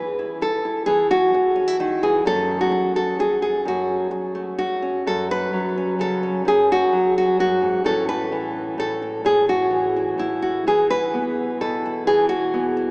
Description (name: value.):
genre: folk, solo fingerstyle acoustic guitar.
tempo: 129 BPM.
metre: 3/4.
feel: straight.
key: F# minor.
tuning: A4 = 440 Hz.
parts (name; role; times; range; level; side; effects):
nylon-string guitar; solo; 0.0-12.9 s; F#2 to B4; -18 LUFS; equal; none.
room: wet cathedral reverb, RT60 5.7 s.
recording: in a vast, echoing space, small speaker sound.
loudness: -18 LUFS.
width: side -33 dB against mid.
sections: 0.0-5.1 A section; 5.1-12.9 A section.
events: none.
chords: 0.0 E5; 2.3 F#m; 7.9 A6; 10.7 E5.